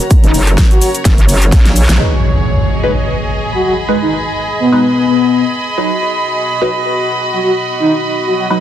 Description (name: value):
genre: bass house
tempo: 127 BPM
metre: 4/4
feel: swing 55% on 16ths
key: G# minor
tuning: A4 = 443 Hz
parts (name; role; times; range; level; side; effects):
- dark analog pad; sustained chords; 0.0-8.6 s; G#3 to D#5; -29 LUFS; left 1 dB; chorus, sidechain pumping
- big-room dance drum kit; drums; 0.0-2.0 s; hi-hat, rim click, shaker, snare drum; -18 LUFS; equal; overdrive
- dark studio string section; texture; 0.0-8.6 s; F#4 to B5; -18 LUFS; right 1 dB; sidechain pumping
- electronic kick drum; drums; 0.1-1.6 s; none; -9 LUFS; equal; overdrive
- breathy flute-like synth lead; melody; 0.2-8.5 s; B3 to F#4; -14 LUFS; left 2 dB; analog chorus, digital delay
- metallic wobble bass; bass; 0.2-2.0 s; E1 to A#1; -11 LUFS; equal; chorus, overdrive, sidechain pumping
- band-passed chord stab; stabs; 2.0-8.6 s; F#3 to B4; -18 LUFS; right 1 dB; phaser, wide subtle chorus, vintage 12-bit sampler grit, sidechain pumping, digital delay
- impact; sound effects; 2.0-3.9 s; none; -16 LUFS; equal; none
room: light reverb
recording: dense, heavily limited modern master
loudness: -10 LUFS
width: side -11 dB against mid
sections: 0.0-2.0 A section; 2.0-8.6 B section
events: drum fill 1.5-2.0; band accent 1.9; impact 2.0-3.9; filter sweep on synth stab 2.0-8.6; filter sweep on analog synth pad 2.0-8.6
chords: 0.0 F#; 2.0 G#m; 5.8 B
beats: | 0.11 0.58 1.05 1.52 | 2.00 2.47 2.94 3.41 | 3.89 4.36 4.83 5.30 | 5.78 6.25 6.72 7.19 | 7.67 8.14